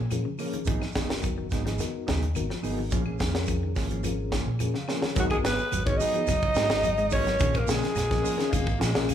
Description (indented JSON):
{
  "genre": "afrobeat",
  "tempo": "107 BPM",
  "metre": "4/4",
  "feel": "straight",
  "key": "G# dorian",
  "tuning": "A4 = 440 Hz",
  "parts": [
    { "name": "fingered electric bass", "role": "bass", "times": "0.0-9.1 s", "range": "F#1 to A#2", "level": "-31 LUFS", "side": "equal", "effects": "none" },
    { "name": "reed electric piano", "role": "accompaniment", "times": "0.1-9.1 s", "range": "B3 to G#5", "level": "-35 LUFS", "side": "left 6 dB", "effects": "fast tremolo" },
    { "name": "clean electric guitar", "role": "arpeggios", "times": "0.1-9.1 s", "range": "C#3 to G#3", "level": "-36 LUFS", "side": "left 5 dB", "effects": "none" },
    { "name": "tight funk drum kit", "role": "drums", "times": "0.1-9.1 s", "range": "hi-hat, kick drum, snare drum", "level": "-29 LUFS", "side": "equal", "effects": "none" },
    { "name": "claves", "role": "percussion", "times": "0.1-9.1 s", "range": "none", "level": "-46 LUFS", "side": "left 8 dB", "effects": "none" },
    { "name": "shekere", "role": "percussion", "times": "0.1-9.1 s", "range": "none", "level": "-38 LUFS", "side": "right 5 dB", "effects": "none" },
    { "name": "mellow electric guitar", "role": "stabs", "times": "0.4-9.1 s", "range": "E#3 to G#4", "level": "-34 LUFS", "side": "right 3 dB", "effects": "none" },
    { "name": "raspy alto saxophone", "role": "melody", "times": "5.2-8.8 s", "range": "F#4 to D#5", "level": "-27 LUFS", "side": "equal", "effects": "none" },
    { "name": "edgy tenor saxophone", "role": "second line", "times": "5.2-8.8 s", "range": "F#3 to D#4", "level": "-35 LUFS", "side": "right 4 dB", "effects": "none" },
    { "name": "breathy baritone saxophone", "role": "second line", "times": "8.2-9.1 s", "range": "G#3 to A#3", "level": "-35 LUFS", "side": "left 2 dB", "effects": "none" }
  ],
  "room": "moderate large studio reverb, RT60 1.1 s",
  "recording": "band playing live in one room",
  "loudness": "-24 LUFS",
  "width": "side -10 dB against mid",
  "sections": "0.0-5.2 A section; 5.2-9.1 B section",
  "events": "reed electric piano fill 4.3-5.2; drum fill 4.9",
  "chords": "0.0 A#m7; 0.7 G#m7; 2.9 A#m7; 5.2 G#m7; 7.4 A#m7"
}